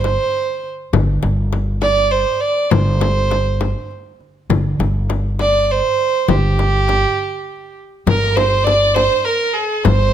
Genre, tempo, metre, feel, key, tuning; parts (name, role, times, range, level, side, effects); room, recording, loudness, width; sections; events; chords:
Arabic maqam ensemble; 67 BPM (dotted quarters); 6/8; straight; A4 = 440 Hz
warm violin; melody; 0.0-10.1 s; G4 to D5; -17 LUFS; right 3 dB; slapback echo
upright bass; bass; 0.0-10.1 s; G1; -18 LUFS; equal
frame drum; percussion; 0.0-10.0 s; -20 LUFS; left 6 dB
darbuka; percussion; 0.1-7.0 s; -24 LUFS; right 2 dB
clear symphonic violin section; second line; 8.1-10.1 s; Ab4+50c to D5; -21 LUFS; equal
moderate recital hall reverb, RT60 1.4 s; close, detailed microphones; -14 LUFS; side -10 dB against mid
0.0-8.1 A section; 8.1-10.1 B section
break 7.2-8.1